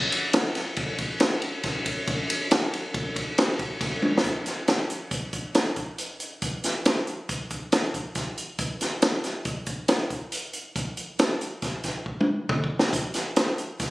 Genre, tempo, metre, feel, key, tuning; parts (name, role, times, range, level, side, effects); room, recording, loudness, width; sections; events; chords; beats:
rock; 138 BPM; 5/4; straight
compact cocktail drum kit; drums; 0.1-13.9 s; hi-hat, kick drum, ride cymbal, snare drum, toms; -24 LUFS; equal
moderate small room reverb, RT60 0.5 s; recorded on a phone in the room, studio reverb, compression; -24 LUFS; side -19 dB against mid
0.0-4.2 A section; 4.2-13.9 B section
drum fill 4.0, 12.1-12.9
0.34 0.78 1.21 1.64 | 2.08 2.51 2.94 3.38 3.81 | 4.25 4.68 5.11 5.55 5.98 | 6.42 6.85 7.29 7.72 8.16 | 8.59 9.03 9.46 9.89 10.33 | 10.76 11.20 11.63 12.07 12.50 | 12.93 13.37 13.80